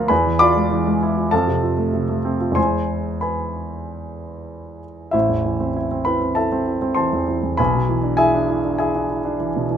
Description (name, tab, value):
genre	classical, virtuoso piano study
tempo	96 BPM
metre	4/4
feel	uneven beats, rubato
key	A minor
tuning	A4 = 442 Hz
part	dark grand piano	solo	0.0-9.8 s	A1 to D6	-18 LUFS	equal	none
room	little or no reverb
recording	close, detailed microphones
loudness	-17 LUFS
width	side -8 dB against mid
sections	0.0-5.1 A section; 5.1-9.8 B section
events	none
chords	0.1 E7b9; 1.3 F; 2.6 E; 5.1 Am; 7.6 E7/B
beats	| 0.11 0.71 1.32 1.93 | 2.57 3.22 3.87 4.51 | 5.14 5.75 6.37 6.98 | 7.59 8.19 8.80 9.40